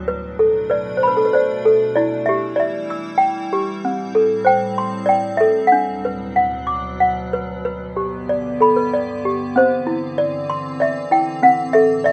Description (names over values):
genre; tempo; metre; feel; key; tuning
children's music, lullaby; 96 BPM; 3/4; rubato; G major; A4 = 438 Hz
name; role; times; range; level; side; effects
toy piano; melody; 0.0-12.1 s; C4 to E6; -19 LUFS; equal; none
icy glass pad; sustained chords; 0.0-12.1 s; D2 to E4; -30 LUFS; equal; chorus, built-in reverb
room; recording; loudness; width
moderate studio reverb, RT60 0.6 s; rough home demo mix; -18 LUFS; mono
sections
0.0-7.7 A section; 7.7-12.1 B section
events
none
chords
0.1 Bm7; 2.0 Em; 3.8 Am7; 5.7 D6; 7.7 G; 9.6 Cadd9; 11.4 Am